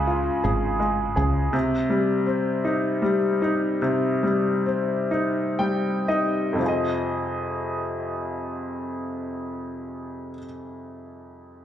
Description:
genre	folk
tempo	37-55 BPM (dotted quarters)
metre	6/8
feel	straight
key	F minor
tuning	A4 = 440 Hz
part	bright upright piano	accompaniment	0.0-11.6 s	F2 to G5	-23 LUFS	left 1 dB	slapback echo
part	woody fretless electric bass	bass	0.0-1.5 s	Ab1 to Db2	-25 LUFS	right 1 dB	none
room	light reverb, small room ambience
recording	live gig heard through the venue's PA, club reverb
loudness	-22 LUFS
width	side -10 dB against mid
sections	0.0-6.6 A section; 6.6-11.6 B section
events	slowing down 1.5-6.6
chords	0.0 Db; 1.5 Cm; 6.6 Fm7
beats	0.45 | 1.54 2.65 | 3.82 5.12 | 6.61 8.23 | 9.84 11.46

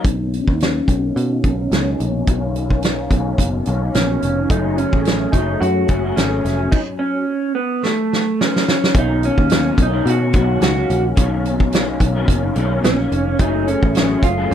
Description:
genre	indie pop, bedroom pop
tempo	108 BPM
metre	4/4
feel	swing 55% on 16ths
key	unclear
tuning	A4 = 440 Hz
part	electric guitar through a small old amp	accompaniment	0.0-14.5 s	F#2 to G#4	-22 LUFS	left 3 dB	ensemble chorus, vibrato effect, low-pass filter
part	picked electric bass	bass	0.0-14.5 s	E#1 to B2	-20 LUFS	equal	none
part	loose indie drum kit	drums	0.0-14.5 s	crash cymbal, hi-hat, kick drum, snare drum	-18 LUFS	equal	none
part	electric guitar through a small old amp	melody	0.1-14.5 s	A3 to F#4	-20 LUFS	right 2 dB	wide subtle chorus, low-pass filter, slapback echo
room	light reverb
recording	none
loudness	-15 LUFS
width	side -9 dB against mid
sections	0.0-8.9 A section; 8.9-14.5 B section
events	filter sweep 0.0-8.9; drum fill 7.8-8.9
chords	0.0 Bmaj9; 4.5 F#madd9; 8.9 Bmaj9; 13.4 F#madd9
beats	| 0.05 0.60 1.16 1.72 | 2.27 2.83 3.38 3.94 | 4.50 5.05 5.61 6.17 | 6.72 7.28 7.83 8.39 | 8.95 9.50 10.06 10.62 | 11.17 11.73 12.28 12.84 | 13.40 13.95 14.51

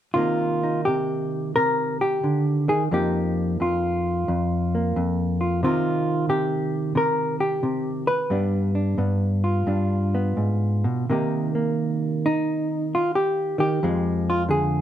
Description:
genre	solo jazz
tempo	88 BPM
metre	4/4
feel	swing 66% on 8ths, rubato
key	C minor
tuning	A4 = 440 Hz
part	hollow-body jazz guitar	solo	0.1-14.8 s	F2 to B4	-21 LUFS	equal	none
room	moderate club reverb, RT60 0.8 s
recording	minimal, uncompressed stereo recording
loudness	-21 LUFS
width	side -10 dB against mid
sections	0.1-11.1 A section; 11.1-14.8 B section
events	none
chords	0.1 Cm7; 2.9 F7sus4; 5.6 Cm; 8.3 G7; 11.1 Cm7; 13.8 Fm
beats	| 0.14 0.85 1.55 2.24 | 2.92 3.60 4.29 4.96 | 5.63 6.30 6.96 7.63 | 8.30 8.98 9.68 10.38 | 11.09 11.78 12.47 13.15 | 13.82 14.49

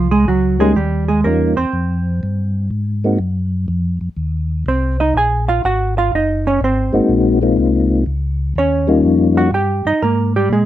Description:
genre	jazz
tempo	123 BPM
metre	4/4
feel	swing 67% on 8ths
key	Eb mixolydian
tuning	A4 = 440 Hz
part	hollow-body jazz guitar	accompaniment	0.0-10.7 s	F3 to Ab5	-16 LUFS	right 3 dB	none
part	mellow tonewheel organ	bass	0.0-10.7 s	Gb1 to Bb2	-18 LUFS	left 1 dB	chorus vibrato, slow rotary speaker
part	percussive tonewheel organ	melody	0.6-3.2, 6.9-9.5 s	G3 to G4	-14 LUFS	left 3 dB	slow rotary speaker, chorus vibrato
room	light reverb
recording	close, detailed microphones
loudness	-14 LUFS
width	side -12 dB against mid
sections	0.0-10.7 A section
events	hollow-body jazz guitar solo 0.0-10.7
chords	0.0 Ab7; 0.8 Ebadd9; 2.7 Ab9; 8.6 Eb9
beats	0.28 | 0.77 1.25 1.74 2.23 | 2.71 3.20 3.69 4.17 | 4.66 5.15 5.63 6.12 | 6.61 7.09 7.58 8.07 | 8.55 9.04 9.53 10.01 | 10.50

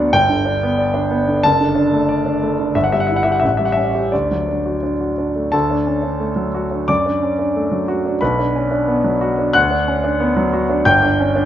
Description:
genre	classical, virtuoso piano study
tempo	85-93 BPM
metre	2/4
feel	rubato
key	D major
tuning	A4 = 440 Hz
part	warm grand piano	solo	0.0-11.5 s	F#1 to G6	-15 LUFS	equal	none
room	moderate recital hall reverb, RT60 1.5 s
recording	nothing above 7.5 kHz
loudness	-15 LUFS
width	side -11 dB against mid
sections	0.0-5.5 A section; 5.5-11.5 A section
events	none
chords	0.1 G; 1.4 D/F#; 2.8 Em/G; 3.4 A7; 4.1 D; 6.9 D/F#; 8.2 Bm; 9.6 Bm/D; 10.9 G5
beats	| 0.12 0.78 | 1.43 2.09 | 2.76 3.43 | 4.13 4.83 | 5.53 6.20 | 6.89 7.56 | 8.21 8.87 | 9.55 10.20 | 10.85

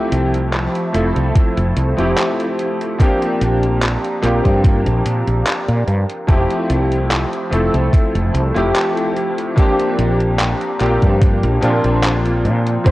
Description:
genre	vaporwave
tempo	73 BPM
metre	4/4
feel	swing 53% on 16ths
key	unclear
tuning	A4 = 438 Hz
part	clear electric grand piano	accompaniment	0.0-12.9 s	F3 to A4	-18 LUFS	equal	ensemble chorus, analog delay
part	warbly tape-like pad	sustained chords	0.0-12.9 s	F3 to Bb5	-27 LUFS	right 1 dB	chorus, built-in reverb
part	woody fretless electric bass	bass	0.1-12.9 s	F1 to Bb2	-17 LUFS	equal	none
part	detuned 8-bit digital drum machine	drums	0.1-12.9 s	handclaps, hi-hat	-24 LUFS	equal	overdrive
part	electronic kick drum	drums	1.4-12.9 s	none	-13 LUFS	equal	overdrive
part	warm velvety synth lead	melody	12.9 s	C5	-18 LUFS	right 1 dB	chorus
room	moderate lush hall reverb, RT60 2.2 s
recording	worn, warbling old tape, cassette tape, warbly pitch drift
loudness	-14 LUFS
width	side -17 dB against mid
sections	0.0-12.9 A section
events	none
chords	0.0 Fmaj7; 3.0 Bb6; 6.3 Fmaj7; 9.6 Bb6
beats	0.53 1.35 2.18 | 3.00 3.82 4.64 5.46 | 6.29 7.11 7.93 8.75 | 9.57 10.40 11.22 12.04 | 12.86

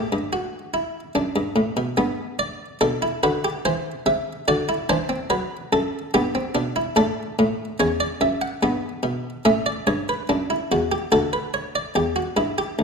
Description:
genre	classical, baroque-style 3-part fugue for harpsichord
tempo	72 BPM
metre	3/4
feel	straight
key	unclear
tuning	A4 = 440 Hz
part	buff-stop harpsichord	solo	0.0-12.8 s	D2 to F#5	-20 LUFS	equal	none
room	moderate recital hall reverb, RT60 1.5 s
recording	none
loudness	-20 LUFS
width	side -5 dB against mid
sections	0.0-12.0 A section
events	none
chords	0.0 A7(no3) (rootless); 1.2 D/F#; 2.0 G; 3.6 C/E; 4.5 D7; 6.1 G; 7.0 D/A; 8.6 G; 9.5 A7; 11.1 D; 12.0 Dsus4 (rootless)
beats	0.34 1.16 | 1.99 2.81 3.65 | 4.47 5.30 6.13 | 6.97 7.80 8.63 | 9.46 10.29 11.13 | 11.96 12.80

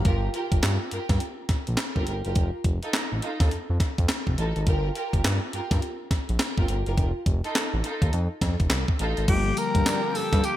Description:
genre	R&B, new jack swing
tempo	104 BPM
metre	4/4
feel	swing 62% on 16ths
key	G minor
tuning	A4 = 440 Hz
part	tine electric piano	accompaniment	0.0-0.1, 9.3-10.6 s	D3 to F4	-31 LUFS	left 7 dB	analog chorus
part	chorused pulse-width pad	sustained chords	0.0, 9.3-10.6 s	G4 to G5	-36 LUFS	left 2 dB	none
part	warm studio string section	stabs	0.0-9.2 s	Eb4 to Bb4	-32 LUFS	right 1 dB	ping-pong delay
part	smooth synth bass	bass	0.0-10.4 s	F1 to G2	-26 LUFS	equal	none
part	clean 12-bit digital drum machine	drums	0.0-10.6 s	crash cymbal, handclaps, hi-hat, kick drum, snare drum, tambourine	-25 LUFS	equal	gated reverb
part	growling alto saxophone	melody	9.3-10.6 s	G4 to Bb4	-28 LUFS	equal	none
room	light reverb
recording	bright 1980s-style digital production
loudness	-23 LUFS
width	side -13 dB against mid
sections	0.1-9.3 A section; 9.3-10.6 B section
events	none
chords	0.1 Gm7; 2.4 F7; 4.7 Gm7; 7.0 F7; 9.3 Gm7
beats	| 0.05 0.63 1.21 1.78 | 2.36 2.94 3.51 4.09 | 4.67 5.24 5.82 6.40 | 6.97 7.55 8.13 8.71 | 9.28 9.86 10.44

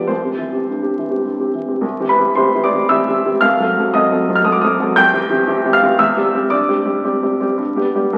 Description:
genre	classical, romantic character piece for solo piano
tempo	100-121 BPM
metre	3/4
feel	rubato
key	C major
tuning	A4 = 439 Hz
part	clear upright piano	solo	0.0-8.2 s	C2 to G6	-16 LUFS	equal	none
room	wet scoring stage reverb, RT60 1.8 s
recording	very old 78 rpm record, vinyl crackle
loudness	-16 LUFS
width	mono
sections	0.0-1.8 A section; 1.8-8.2 A section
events	none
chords	0.1 C; 3.4 Cdim7; 5.0 C; 6.0 C/E; 6.5 Gsus4; 7.6 G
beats	| 0.09 0.69 1.27 | 1.83 2.37 2.91 | 3.44 3.96 4.47 | 4.97 5.47 5.99 | 6.51 7.05 7.59 | 8.14

